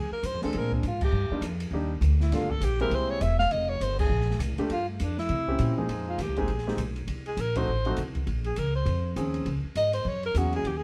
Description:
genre	jazz, small-group swing and bop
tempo	202 BPM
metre	4/4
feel	swing 60% on 8ths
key	F minor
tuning	A4 = 439 Hz
part	breathy alto saxophone	melody	0.0-10.8 s	A3 to F5	-32 LUFS	equal	none
part	upright bass	bass	0.0-10.8 s	E1 to C3	-31 LUFS	equal	none
part	open jazz drum kit	drums	0.2-10.7 s	crash cymbal, hi-hat, kick drum, ride cymbal, snare drum	-38 LUFS	equal	none
part	warm grand piano	accompaniment	0.4-10.7 s	F2 to A4	-34 LUFS	equal	none
room	light reverb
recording	band playing live in one room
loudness	-28 LUFS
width	mono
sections	0.0-5.9 A section; 5.9-10.8 B section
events	band accent 1.0, 4.0; alto saxophone solo 5.9-10.8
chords	0.0 Fm7; 0.5 Bb9; 1.1 Ebmaj9; 2.3 Gm9; 2.9 C7b13; 3.5 Fmadd9; 4.7 F69; 5.3 C7b9; 5.9 Fm11; 7.1 Cm7b5; 7.7 F7b9; 8.3 Bbm9; 9.5 Db5; 10.1 Gb9

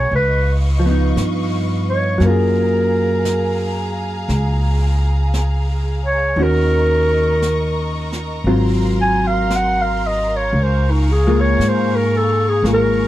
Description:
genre	jazz ballad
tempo	58 BPM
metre	4/4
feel	swing 68% on 8ths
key	unclear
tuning	A4 = 441 Hz
part	growling clarinet	melody	0.0-13.1 s	Eb4 to Ab5	-18 LUFS	right 1 dB	none
part	vintage hollow-body jazz guitar	accompaniment	0.0-13.1 s	Eb3 to Bb4	-20 LUFS	left 1 dB	none
part	warm symphonic string section	sustained chords	0.0-13.1 s	Ab4 to Db6	-28 LUFS	equal	none
part	upright bass	bass	0.0-13.1 s	Ab1 to Ab2	-18 LUFS	equal	none
part	jazz brush drum kit	drums	0.1-13.1 s	brushed snare drum, hi-hat, snare drum	-34 LUFS	right 1 dB	none
room	light reverb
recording	dry, close 1970s-style studio recording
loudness	-15 LUFS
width	side -14 dB against mid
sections	0.0-13.1 A section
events	clarinet solo 0.0-13.1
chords	0.1 Db9; 2.2 Gbmaj9; 6.4 Ebm7; 8.5 Ab13; 10.6 Db6

